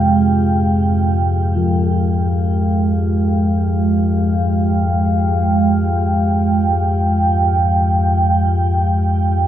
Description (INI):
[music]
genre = dark ambient drone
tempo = free time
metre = none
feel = none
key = F minor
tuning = A4 = 440 Hz
[part]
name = dark analog pad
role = sustained chords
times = 0.0-9.5 s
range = Ab3 to G5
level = -17 LUFS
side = right 3 dB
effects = chorus, phaser, shimmer reverb
[part]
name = deep rumbling drone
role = drone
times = 0.0-9.5 s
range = F2 to C3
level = -17 LUFS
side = left 1 dB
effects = built-in reverb, lush chorus
[part]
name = bronze singing bowl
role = texture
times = 0.0-9.5 s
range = F3 to Ab4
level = -25 LUFS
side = left 6 dB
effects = shimmer reverb
[sound]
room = wet spring reverb, RT60 2.4 s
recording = nothing above 7.8 kHz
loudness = -14 LUFS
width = side -11 dB against mid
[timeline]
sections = 0.0-1.6 A section; 1.6-9.5 B section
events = none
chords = 0.0 Fmadd9